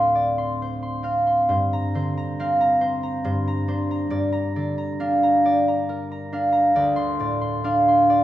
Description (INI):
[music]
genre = classical, solo harp piece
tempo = 68 BPM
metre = 3/4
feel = rubato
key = Bb major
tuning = A4 = 440 Hz
[part]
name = concert harp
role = solo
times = 0.0-8.2 s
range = D2 to C6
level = -19 LUFS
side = equal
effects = none
[sound]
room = wet recital hall reverb, RT60 1.8 s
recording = heard from further back in the room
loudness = -19 LUFS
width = side -13 dB against mid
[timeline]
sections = 0.0-8.2 A section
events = none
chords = 0.0 Dm7; 1.5 Bb69/G; 4.1 Gm7; 6.8 Dm7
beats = 0.60 | 1.50 2.38 3.24 | 4.11 5.00 5.88 | 6.75 7.62